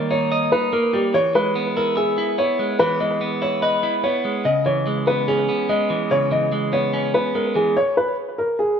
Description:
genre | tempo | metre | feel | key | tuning
hip hop | 145 BPM | 4/4 | half-time | unclear | A4 = 440 Hz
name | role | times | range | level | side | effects
clean electric guitar | accompaniment | 0.0-7.8 s | C#3 to E5 | -22 LUFS | right 2 dB | spring reverb
dark grand piano | melody | 0.1-8.8 s | G4 to D#5 | -20 LUFS | left 1 dB | digital delay
room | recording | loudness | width
light reverb, studio ambience | none | -18 LUFS | side -7 dB against mid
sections
0.0-8.8 A section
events
none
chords
0.0 D#; 1.1 E; 4.5 C#m7; 7.8 N.C.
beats
0.31 0.73 | 1.14 1.55 1.97 2.38 | 2.80 3.21 3.62 4.04 | 4.45 4.87 5.28 5.69 | 6.11 6.52 6.93 7.35 | 7.76 8.18 8.59

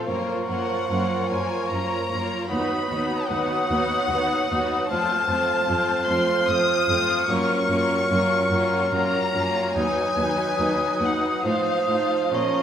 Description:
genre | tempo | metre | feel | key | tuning
classical, slow romantic movement for symphony orchestra | 74 BPM | 3/4 | rubato | unclear | A4 = 440 Hz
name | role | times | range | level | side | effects
rich chamber violin section | melody | 0.0-12.6 s | Eb5 to Eb6 | -28 LUFS | left 4 dB | none
rich chamber violin section | second line | 0.0-12.6 s | D#4 to Db5 | -31 LUFS | left 1 dB | none
silver concert flute | second line | 0.0-12.6 s | Db6 to F6 | -27 LUFS | left 2 dB | none
warm clarinet | second line | 0.0-12.6 s | Bb4 to Db5 | -30 LUFS | right 2 dB | none
clear bassoon | accompaniment | 0.0-12.6 s | F3 to Gb3 | -27 LUFS | right 3 dB | none
rich studio viola section | accompaniment | 0.0-12.6 s | F3 to F4 | -30 LUFS | left 1 dB | none
rich chamber cello section | bass | 0.1-12.4 s | D#2 to Bb2 | -30 LUFS | right 2 dB | none
room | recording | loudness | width
wet scoring stage reverb, RT60 2.0 s | recorded in a church or concert hall | -20 LUFS | side -9 dB against mid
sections
0.0-12.6 A section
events
none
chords
0.1 Gbmaj7; 2.5 B/D#; 4.9 F; 7.3 Gbmaj7; 9.8 B/D#; 11.4 F7(no3)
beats
| 0.07 0.89 1.70 | 2.50 3.29 4.10 | 4.90 5.69 6.50 | 7.29 8.10 8.93 | 9.76 10.59 11.44 | 12.32

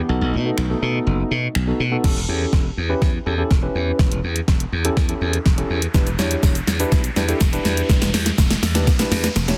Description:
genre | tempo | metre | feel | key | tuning
dance-pop | 123 BPM | 4/4 | straight | unclear | A4 = 440 Hz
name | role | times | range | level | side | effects
chorused pulse-width pad | sustained chords | 0.0-2.0 s | A3 to D#4 | -32 LUFS | equal | sidechain pumping
tine electric piano | accompaniment | 0.1-9.6 s | B3 to C#5 | -27 LUFS | equal | sidechain pumping
glassy slap bass | bass | 0.1-9.5 s | E1 to B2 | -24 LUFS | equal | sidechain pumping
smooth R&B drum kit | drums | 0.6-9.6 s | crash cymbal, finger snaps, hi-hat, kick drum, shaker, snare drum | -21 LUFS | equal | overdrive, soft clipping on snare
riser | sound effects | 3.9-9.6 s | none | -35 LUFS | equal | none
tambourine | percussion | 6.2-9.5 s | none | -42 LUFS | equal | none
room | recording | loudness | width
light reverb, digital ambience | dense, heavily limited modern master | -20 LUFS | mono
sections
0.0-2.0 A section; 2.0-9.6 B section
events
kick muted 0.1-2.0; build-up 2.0-9.6; drum fill 2.0-9.6; riser 3.9-9.6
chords
0.1 B7; 2.0 A7/E; 5.9 Em7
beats
| 0.09 0.58 1.07 1.55 | 2.04 2.53 3.02 3.51 | 3.99 4.48 4.97 5.46 | 5.95 6.43 6.92 7.41 | 7.90 8.38 8.87 9.36

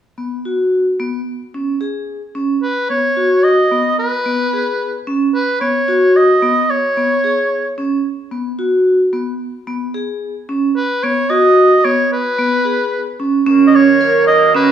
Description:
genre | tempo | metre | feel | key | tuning
contemporary instrumental, chamber music in an uneven meter | 221 BPM (eighths) | 5/8 | straight | B major | A4 = 440 Hz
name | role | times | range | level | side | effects
vibraphone with hard mallets | arpeggios | 0.2-14.7 s | B3 to A#4 | -15 LUFS | right 1 dB | none
warm oboe | melody | 2.6-7.8, 10.8-14.7 s | B4 to D#5 | -15 LUFS | right 1 dB | none
warm woodwind section | sustained chords | 13.5-14.7 s | F#2 to A#3 | -21 LUFS | equal | none
room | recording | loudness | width
moderate scoring stage reverb, RT60 1.6 s | small room ambience | -12 LUFS | side -9 dB against mid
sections
0.0-2.6 A section; 2.6-13.5 B section; 13.5-14.7 C section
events
none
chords
0.0 B5; 1.3 C#5; 2.6 Badd9; 4.0 C#5/B; 5.3 Badd9; 6.7 C#5/B; 8.0 B5; 9.4 C#5/B; 10.8 B; 12.1 C#5/B; 13.5 F#6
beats
0.18 0.46 0.73 1.00 | 1.27 1.54 1.81 2.08 2.36 | 2.63 2.90 3.17 3.44 3.71 | 3.98 4.25 4.53 4.80 5.07 | 5.34 5.61 5.88 6.15 6.42 | 6.69 6.96 7.24 7.51 7.78 | 8.05 8.32 8.59 8.86 9.13 | 9.40 9.68 9.95 10.22 10.49 | 10.76 11.03 11.30 11.57 11.84 | 12.11 12.38 12.65 12.92 13.19 | 13.46 13.73 14.01 14.28 14.55

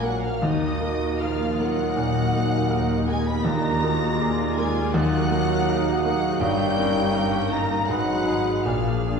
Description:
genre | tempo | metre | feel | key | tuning
classical | 72-82 BPM | 4/4 | rubato | Eb minor | A4 = 438 Hz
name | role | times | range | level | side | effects
clear baby grand piano | melody | 0.0-9.2 s | Eb2 to Bb4 | -26 LUFS | left 1 dB | none
warm studio violin section | melody | 0.0-9.2 s | Eb6 to Cb7 | -35 LUFS | left 2 dB | none
clear clarinet | second line | 0.0-9.2 s | D4 to F4 | -33 LUFS | right 3 dB | none
mellow cor anglais | second line | 0.0-9.2 s | Ab4 to Eb5 | -35 LUFS | right 1 dB | none
mellow silver concert flute | second line | 0.0-9.2 s | Eb5 to Cb6 | -32 LUFS | right 1 dB | none
rich studio violin section | second line | 0.0-9.2 s | Eb5 to Cb6 | -32 LUFS | left 1 dB | none
mellow bassoon | accompaniment | 0.0-9.2 s | Ab3 to Bb3 | -34 LUFS | right 2 dB | none
rich studio viola section | accompaniment | 0.0-9.2 s | Db4 to Cb5 | -32 LUFS | right 1 dB | none
clear French horn section | sustained chords | 0.0-9.2 s | Eb3 to Cb4 | -29 LUFS | left 2 dB | none
rich studio cello section | bass | 0.0-9.2 s | Eb2 to Bb2 | -30 LUFS | right 1 dB | none
rich studio double bass section | bass | 0.0-9.2 s | G1 to Eb2 | -31 LUFS | right 1 dB | none
timpani | percussion | 0.4-4.5 s | Eb3 | -33 LUFS | left 3 dB | none
room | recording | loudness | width
wet scoring stage reverb, RT60 1.7 s | heard from further back in the room | -20 LUFS | side -5 dB against mid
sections
0.0-9.2 A section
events
none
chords
0.4 Ebm; 3.5 Bb7/Eb; 4.9 Ebm; 6.4 Eb7/G; 7.9 Abm; 8.7 Bb7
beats
| 0.42 1.21 1.97 2.71 | 3.46 4.20 4.94 5.68 | 6.41 7.15 7.89 8.66

